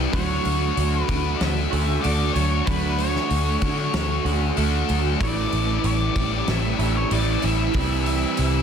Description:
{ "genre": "rock, shoegaze and dream pop", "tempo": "95 BPM", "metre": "4/4", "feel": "straight", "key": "unclear", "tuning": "A4 = 440 Hz", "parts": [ { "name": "picked twelve-string acoustic guitar", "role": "arpeggios", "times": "0.0-8.6 s", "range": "E3 to G4", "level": "-32 LUFS", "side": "right 11 dB", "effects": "analog chorus, analog delay" }, { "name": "biting overdriven guitar", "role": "riff", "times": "0.0-8.6 s", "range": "A2 to F#4", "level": "-26 LUFS", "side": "left 13 dB", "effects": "lush chorus" }, { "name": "electric guitar through a small old amp", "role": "riff", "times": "0.0-8.6 s", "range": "A2 to F#4", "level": "-28 LUFS", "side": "right 13 dB", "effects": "reverse reverb" }, { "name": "vintage muted picked electric bass", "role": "bass", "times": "0.0-8.6 s", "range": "A1 to D3", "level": "-24 LUFS", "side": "equal", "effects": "none" }, { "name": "octave-fuzz lead guitar", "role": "melody", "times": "0.1-8.6 s", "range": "B4 to E5", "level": "-29 LUFS", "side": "left 1 dB", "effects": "distortion, analog delay" }, { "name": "loose indie drum kit", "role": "drums", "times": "0.1-8.5 s", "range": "hi-hat, kick drum, snare drum", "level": "-30 LUFS", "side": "equal", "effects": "none" } ], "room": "small room ambience", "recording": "dense, heavily limited modern master", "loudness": "-20 LUFS", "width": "side -7 dB against mid", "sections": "0.0-8.6 A section", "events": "none", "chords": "0.1 Dmaj7; 5.2 A7sus4; 7.7 C" }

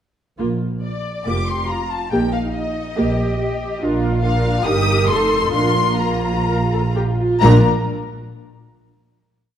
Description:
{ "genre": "quick classical-period movement for string orchestra", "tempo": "126-144 BPM", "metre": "4/4", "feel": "rubato", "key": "Bb major", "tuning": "A4 = 444 Hz", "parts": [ { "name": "rich studio viola section", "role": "accompaniment", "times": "0.4-7.7 s", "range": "Bb3 to Bb4", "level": "-22 LUFS", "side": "right 1 dB", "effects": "none" }, { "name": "warm studio double bass section", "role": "bass", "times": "0.4-7.7 s", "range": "F1 to Bb1", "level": "-20 LUFS", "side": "right 1 dB", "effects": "none" }, { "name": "warm studio violin section", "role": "melody", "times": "0.8-7.7 s", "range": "D5 to Eb6", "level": "-24 LUFS", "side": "left 5 dB", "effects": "none" }, { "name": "rich studio violin section", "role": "second line", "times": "0.8-7.7 s", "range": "Bb4 to Eb6", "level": "-26 LUFS", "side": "left 3 dB", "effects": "none" }, { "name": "warm studio cello section", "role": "bass", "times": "1.3-7.7 s", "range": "Bb2 to A4", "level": "-23 LUFS", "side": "right 1 dB", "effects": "none" } ], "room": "moderate scoring stage reverb, RT60 1.7 s", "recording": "dark, warm production", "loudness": "-16 LUFS", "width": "side -10 dB against mid", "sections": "0.4-7.4 A section; 7.4-9.2 final chord", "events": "none", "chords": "0.4 Bb; 2.1 Eb/Bb; 3.8 Bb; 4.7 Eb/G; 5.1 F7; 5.5 Bb" }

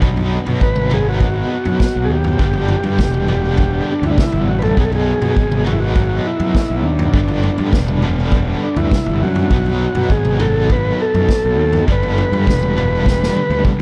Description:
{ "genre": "psychedelic rock", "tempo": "101 BPM", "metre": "4/4", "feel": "straight", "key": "unclear", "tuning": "A4 = 440 Hz", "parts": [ { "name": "cranked stack guitar", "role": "riff", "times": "0.0-13.8 s", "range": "G2 to D#4", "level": "-24 LUFS", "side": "equal", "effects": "overdrive, tremolo, tape echo" }, { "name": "fuzz fingered electric bass", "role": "bass", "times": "0.0-13.8 s", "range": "E1 to B2", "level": "-21 LUFS", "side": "equal", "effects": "overdrive" }, { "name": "vintage drum kit", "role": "drums", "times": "0.0-13.8 s", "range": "kick drum, snare drum, toms", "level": "-21 LUFS", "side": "equal", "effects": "none" }, { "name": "combo organ", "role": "melody", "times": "0.6-13.6 s", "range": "D4 to B4", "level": "-22 LUFS", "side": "equal", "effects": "tape echo" } ], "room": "light reverb, small room ambience", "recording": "echo-heavy mix", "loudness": "-16 LUFS", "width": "mono", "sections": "0.0-13.8 A section", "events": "drum fill 13.1-13.8", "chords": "0.0 B; 2.4 G; 4.8 B; 7.1 G; 9.5 B; 11.9 G" }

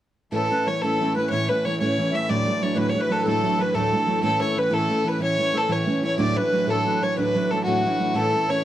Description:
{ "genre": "celtic folk, Celtic slide", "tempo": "123 BPM (dotted quarters)", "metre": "12/8", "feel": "straight", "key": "A major", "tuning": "A4 = 440 Hz", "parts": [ { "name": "rich fiddle", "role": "melody", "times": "0.3-8.6 s", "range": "F#4 to E5", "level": "-24 LUFS", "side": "left 1 dB", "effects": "none" }, { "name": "accordion", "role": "second line", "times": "0.3-8.6 s", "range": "F#4 to E5", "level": "-29 LUFS", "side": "left 2 dB", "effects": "light tremolo tuning" }, { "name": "picked steel-string acoustic guitar", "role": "accompaniment", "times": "0.3-8.6 s", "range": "D2 to E4", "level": "-24 LUFS", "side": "right 2 dB", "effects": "none" }, { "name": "hand-pumped harmonium", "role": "drone", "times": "0.3-8.6 s", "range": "A2 to E3", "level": "-32 LUFS", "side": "left 3 dB", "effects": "none" } ], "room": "moderate studio reverb, RT60 0.5 s", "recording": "dark, warm production", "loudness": "-20 LUFS", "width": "side -12 dB against mid", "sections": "0.3-8.6 A section", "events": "none", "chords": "0.3 A; 2.3 Dadd9; 4.2 A; 6.2 Dadd9" }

